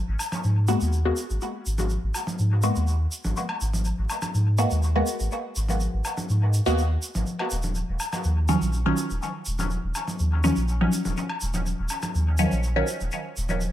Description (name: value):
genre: dub techno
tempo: 123 BPM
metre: 4/4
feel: straight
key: G# dorian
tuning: A4 = 443 Hz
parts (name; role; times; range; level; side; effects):
- soft dub sub bass; bass; 0.1-13.7 s; D#1 to G#2; -24 LUFS; equal; none
- tube shaker; percussion; 0.2-13.7 s; none; -36 LUFS; right 2 dB; none
- woodblock and congas; percussion; 0.2-13.6 s; none; -32 LUFS; left 1 dB; overdrive, dub echo
- filtered dub chord stab; stabs; 0.7-13.7 s; D#3 to F#4; -27 LUFS; equal; phaser, dub echo
room: light reverb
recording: vinyl crackle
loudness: -23 LUFS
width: side -12 dB against mid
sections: 0.0-13.7 A section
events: none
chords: 0.0 G#m9; 7.3 D#m9